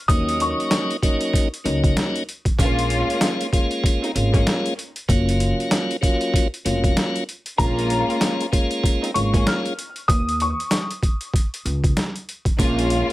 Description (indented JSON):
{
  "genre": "hip hop, boom-bap hip-hop",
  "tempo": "96 BPM",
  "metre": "4/4",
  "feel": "swing 60% on 16ths",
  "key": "Bb minor",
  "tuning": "A4 = 440 Hz",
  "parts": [
    { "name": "warm upright piano", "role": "melody", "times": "0.1-0.9, 7.6-10.9 s", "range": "Bb5 to F6", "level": "-25 LUFS", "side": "left 2 dB", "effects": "high-pass filter, low-pass filter, digital delay" },
    { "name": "tonewheel organ", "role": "accompaniment", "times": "0.1-13.1 s", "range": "Gb3 to F4", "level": "-23 LUFS", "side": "equal", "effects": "slow rotary speaker, high-pass filter, low-pass filter" },
    { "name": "upright bass", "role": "bass", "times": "0.1-13.0 s", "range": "F1 to Eb2", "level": "-23 LUFS", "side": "equal", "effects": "none" },
    { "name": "boom bap sampler-style drum kit", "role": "drums", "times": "0.1-13.1 s", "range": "hi-hat, kick drum, snare drum", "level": "-21 LUFS", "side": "equal", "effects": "overdrive" },
    { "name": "warm studio string section", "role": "stabs", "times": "2.6-13.1 s", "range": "Ab3 to F4", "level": "-26 LUFS", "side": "left 1 dB", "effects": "high-pass filter, low-pass filter, digital delay" }
  ],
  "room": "little or no reverb",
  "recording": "none",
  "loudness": "-19 LUFS",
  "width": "side -16 dB against mid",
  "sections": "0.0-13.1 A section",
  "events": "none",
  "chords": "0.1 Ebm7; 2.6 Bbm7; 5.1 Gbmaj7; 7.6 Bbm7; 10.1 Dbsus2; 12.6 Bbm7",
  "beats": "| 0.09 0.71 1.34 1.96 | 2.59 3.21 3.84 4.46 | 5.09 5.71 6.34 6.96 | 7.59 8.21 8.84 9.46 | 10.09 10.71 11.34 11.96 | 12.59"
}